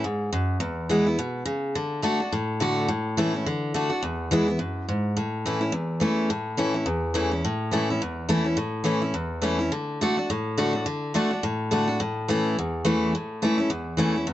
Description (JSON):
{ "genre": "rock", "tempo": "211 BPM", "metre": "4/4", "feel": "swing 59% on 8ths", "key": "A major", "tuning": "A4 = 440 Hz", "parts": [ { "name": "picked steel-string acoustic guitar", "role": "solo", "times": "0.0-14.3 s", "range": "E2 to F#4", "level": "-23 LUFS", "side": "equal", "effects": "none" } ], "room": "light reverb", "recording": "nothing above 7.9 kHz", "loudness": "-23 LUFS", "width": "side -13 dB against mid", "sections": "0.0-5.2 A section; 5.2-14.3 B section", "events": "none", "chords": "0.0 N.C.; 0.6 E; 1.8 D; 2.9 A; 3.5 D; 4.0 E; 5.2 A; 9.7 D; 12.0 A" }